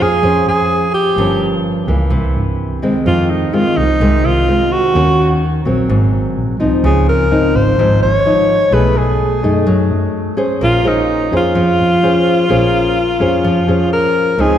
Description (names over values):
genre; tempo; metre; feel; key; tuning
bossa nova; 127 BPM; 4/4; straight; Bb minor; A4 = 439 Hz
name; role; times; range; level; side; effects
breathy alto saxophone; melody; 0.0-14.6 s; Eb4 to Db5; -14 LUFS; equal; none
nylon-string guitar; accompaniment; 0.0-14.6 s; F2 to C5; -16 LUFS; left 1 dB; none
warm double bass; bass; 0.0-14.6 s; G1 to G2; -17 LUFS; equal; none
room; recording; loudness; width
wet concert hall reverb, RT60 2.3 s; recorded in a church or concert hall; -11 LUFS; side -10 dB against mid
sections
0.0-14.4 A section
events
none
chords
0.0 Bbm9; 1.2 Gm7b5; 2.1 C7; 3.1 Fm7; 5.0 Ebm7; 5.9 Ab9; 6.8 Dbmaj9; 8.7 B13; 10.6 Bbm9